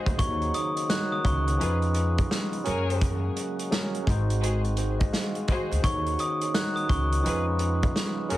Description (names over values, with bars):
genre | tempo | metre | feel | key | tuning
hip hop, boom-bap hip-hop | 85 BPM | 4/4 | swing 62% on 16ths | Eb minor | A4 = 440 Hz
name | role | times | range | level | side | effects
tine electric piano | accompaniment | 0.0-8.4 s | Eb3 to F5 | -31 LUFS | right 1 dB | slow stereo tremolo, high-pass filter, low-pass filter
tonewheel organ | sustained chords | 0.0-8.4 s | Db3 to Gb4 | -38 LUFS | left 1 dB | overdrive, wide subtle chorus, high-pass filter, low-pass filter
rich studio string section | stabs | 0.0-8.4 s | Db4 to Db5 | -34 LUFS | left 3 dB | high-pass filter, low-pass filter, digital delay
upright bass | bass | 0.1-8.4 s | Ab1 to Gb2 | -27 LUFS | equal | none
vintage drum kit | drums | 0.1-8.4 s | hi-hat, kick drum, snare drum | -28 LUFS | equal | none
glockenspiel with brass mallets | melody | 0.2-7.4 s | Db6 to Gb6 | -31 LUFS | left 1 dB | high-pass filter, low-pass filter
room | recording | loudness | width
little or no reverb | heavily compressed radio sound | -24 LUFS | side -15 dB against mid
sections
0.0-8.4 A section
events
none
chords
0.2 Ebm7; 1.6 Db7/F; 2.7 Gbadd9; 4.1 Ab7; 5.8 Ebm7; 7.3 Db7/F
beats
| 0.19 0.90 1.60 2.31 | 3.02 3.72 4.43 5.13 | 5.84 6.54 7.25 7.96